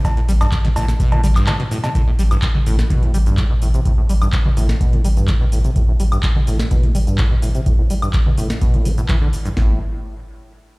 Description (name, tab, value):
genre	acid house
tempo	126 BPM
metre	4/4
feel	straight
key	A minor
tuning	A4 = 441 Hz
part	liquid acid bass	riff	0.0-9.8 s	G2 to C4	-22 LUFS	equal	chorus, cassette tape, tape echo
part	booming analog drum machine	drums	0.0-9.7 s	kick drum, snare drum	-17 LUFS	equal	overdrive
part	booming analog drum machine	drums	0.0-9.6 s	cabasa, cowbell, handclaps, hi-hat, snare drum, toms, woodblock	-24 LUFS	equal	overdrive
part	round analog bass	bass	0.3-9.8 s	A1	-17 LUFS	equal	sidechain pumping
room	little or no reverb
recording	played on a big sound system in a bare room, large studio reverb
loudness	-14 LUFS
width	side -26 dB against mid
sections	0.0-1.9 A section; 1.9-9.6 B section; 9.6-10.8 C section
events	drop 0.0-1.9; break 1.5-1.9; filter sweep on acid bass 1.9-9.6; filter sweep on analog synth bass 1.9-9.6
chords	none